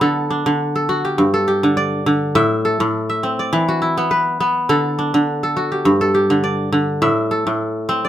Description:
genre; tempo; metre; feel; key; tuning
west african traditional; 103 BPM; 4/4; swing 54% on 16ths; G major; A4 = 440 Hz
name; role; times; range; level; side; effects
kora; solo; 0.0-8.1 s; G2 to E5; -15 LUFS; equal; none
room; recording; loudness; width
moderate studio reverb, RT60 0.6 s; minimal, uncompressed stereo recording; -15 LUFS; side -11 dB against mid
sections
0.0-8.1 A section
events
none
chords
0.0 D; 1.2 G5; 2.4 Am; 3.5 E5; 4.7 D; 5.9 G5; 7.0 Am

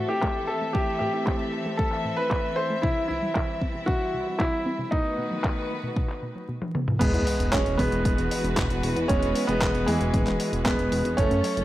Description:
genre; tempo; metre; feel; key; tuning
italo disco; 115 BPM; 4/4; straight; unclear; A4 = 440 Hz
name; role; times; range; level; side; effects
warm grand piano; melody; 0.0-11.6 s; E3 to C5; -27 LUFS; right 1 dB; tape echo
dark studio string section; sustained chords; 0.0-11.6 s; D#3 to E5; -30 LUFS; left 1 dB; low-pass filter
wide unison pluck; arpeggios; 0.0-6.9 s; C2 to A4; -36 LUFS; right 1 dB; analog delay
detuned 8-bit digital drum machine; drums; 0.2-11.6 s; crash cymbal, handclaps, hi-hat, toms; -31 LUFS; equal; low-pass filter on snare, low-pass filter on toms, low-pass filter on hats, low-pass filter on cymbals
electronic kick drum; drums; 0.2-11.3 s; none; -27 LUFS; equal; overdrive
chorused synth bass; bass; 7.0-11.6 s; D1 to F#2; -28 LUFS; equal; tube saturation
sub drop; sound effects; 7.0-9.1 s; none; -33 LUFS; equal; none
room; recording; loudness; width
little or no reverb; dry, gritty hardware recording, vinyl crackle; -23 LUFS; side -15 dB against mid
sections
0.0-7.0 A section; 7.0-11.6 B section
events
drum fill 6.6-7.0; impact 7.0-9.1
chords
0.0 Am; 2.8 C; 4.9 B7; 7.0 Eadd9

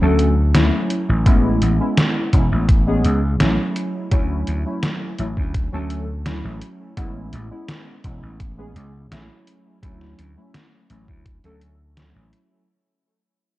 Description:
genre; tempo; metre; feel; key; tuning
vaporwave; 84 BPM; 4/4; straight; unclear; A4 = 440 Hz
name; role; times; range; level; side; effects
warbly lo-fi synth keys; accompaniment; 0.0-12.7 s; F#3 to A4; -23 LUFS; equal; analog chorus, tape echo
vintage slap bass; bass; 0.0-12.3 s; E1 to D2; -20 LUFS; equal; tube saturation
detuned 8-bit digital drum machine; drums; 0.2-12.5 s; hi-hat, snare drum; -21 LUFS; equal; gated reverb
electronic kick drum; drums; 1.3-11.4 s; none; -18 LUFS; equal; none
room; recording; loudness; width
little or no reverb; cassette tape; -17 LUFS; side -17 dB against mid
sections
0.0-12.7 A section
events
fade-out 0.0-12.7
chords
0.0 Dmaj9; 1.3 Amaj7; 3.8 Dmaj9; 7.0 Amaj7; 9.5 Dmaj9

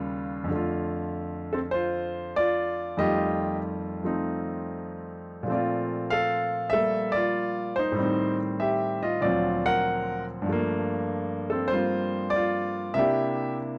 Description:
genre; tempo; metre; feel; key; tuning
solo jazz; 96 BPM; 4/4; swing 68% on 8ths; F major; A4 = 440 Hz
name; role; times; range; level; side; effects
clear grand piano; solo; 0.0-13.8 s; D2 to F#5; -28 LUFS; equal; none
room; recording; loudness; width
moderate club reverb, RT60 0.6 s; none; -27 LUFS; mono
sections
0.5-13.8 A section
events
none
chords
0.5 F6; 3.0 F9; 5.5 Bbmaj9; 8.0 Am7b5; 9.2 D7alt; 10.5 Gm9; 13.0 C9

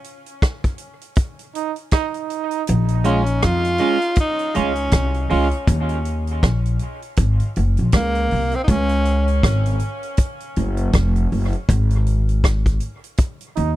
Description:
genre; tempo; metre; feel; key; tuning
dub reggae; 80 BPM; 4/4; swing 59% on 16ths; unclear; A4 = 440 Hz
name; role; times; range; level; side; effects
vintage drum kit; drums; 0.0-13.8 s; hi-hat, kick drum, rim click; -18 LUFS; equal; none
bright trombone; second line; 1.6-2.6, 13.6-13.7 s; Eb4; -27 LUFS; right 11 dB; high-pass filter, dub echo
upright bass; bass; 2.7-13.8 s; F1 to F2; -18 LUFS; equal; none
semi-hollow electric guitar; accompaniment; 3.0-5.5 s; Ab3 to F4; -24 LUFS; right 3 dB; lush chorus, high-pass filter, dub echo
clear tenor saxophone; melody; 3.1-9.3 s; Bb3 to F4; -24 LUFS; equal; dub echo
room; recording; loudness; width
small room reverb; dry, close 1970s-style studio recording; -17 LUFS; side -15 dB against mid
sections
0.0-13.8 A section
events
break 0.0-2.7; band accent 0.0-2.7, 11.7-13.8; kick muted 2.7-4.2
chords
0.0 N.C.; 2.7 Bbm7; 5.7 Eb7(no3); 8.7 Db; 11.7 N.C.

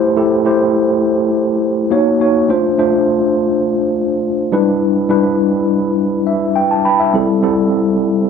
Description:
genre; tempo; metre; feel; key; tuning
soul; 103 BPM; 4/4; swing 54% on 16ths; A minor; A4 = 441 Hz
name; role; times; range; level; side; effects
mellow tine electric piano; solo; 0.0-8.3 s; G3 to B5; -12 LUFS; left 1 dB; medium stereo tremolo
room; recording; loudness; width
light reverb; small room ambience; -12 LUFS; side -6 dB against mid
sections
0.0-8.3 A section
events
tine electric piano fill 6.0-7.1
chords
0.0 Am7; 1.9 D#m7; 2.5 Dm7; 4.5 Em7; 7.1 Am7

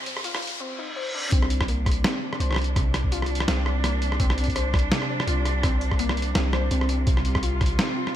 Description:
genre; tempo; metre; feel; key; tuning
half-time drum and bass; 167 BPM; 4/4; swing 57% on 16ths, half-time; unclear; A4 = 440 Hz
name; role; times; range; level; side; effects
clear studio cello section; sustained chords; 0.0-8.2 s; C3 to F4; -32 LUFS; right 1 dB; sidechain pumping
warbly dusty pluck; arpeggios; 0.0-8.0 s; C3 to C5; -31 LUFS; left 2 dB; chorus, cassette tape, digital delay
riser and reverse cymbal; sound effects; 0.0-1.3 s; none; -31 LUFS; left 1 dB; none
boom bap sampler-style drum kit; drums; 0.1-8.1 s; hi-hat, rim click, snare drum; -28 LUFS; equal; none
long sustained 808-style bass; bass; 1.3-7.8 s; C2; -25 LUFS; equal; none
electronic kick drum; drums; 1.3-7.7 s; none; -24 LUFS; equal; none
room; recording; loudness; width
light reverb, digital ambience; bright 1980s-style digital production, high-pass filter; -22 LUFS; side -11 dB against mid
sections
0.0-1.3 A section; 1.3-8.2 B section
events
build-up 0.0-1.3; riser 0.0-0.6; filter sweep on synth pluck 0.0-1.3; reverse cymbal 0.6-1.3; drop 1.3-8.2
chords
0.0 Cm; 1.3 C5

